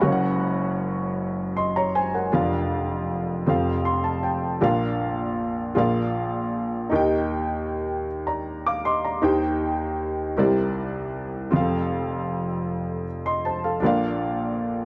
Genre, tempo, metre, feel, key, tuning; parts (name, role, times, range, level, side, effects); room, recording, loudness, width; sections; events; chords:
gospel; 52 BPM (dotted quarters); 6/8; straight; Bb major; A4 = 440 Hz
warm upright piano; solo; 0.0-14.8 s; F1 to D6; -25 LUFS; equal
light reverb; -25 LUFS; mono
0.0-4.6 A section; 4.6-14.8 A section
upright piano fill 3.5-4.6
0.0 Gb; 2.3 Bb/F; 3.5 F; 4.6 Bb; 5.8 Bb7; 6.9 Eb; 9.2 Cm/Eb; 10.4 C9; 11.5 F; 13.8 Bb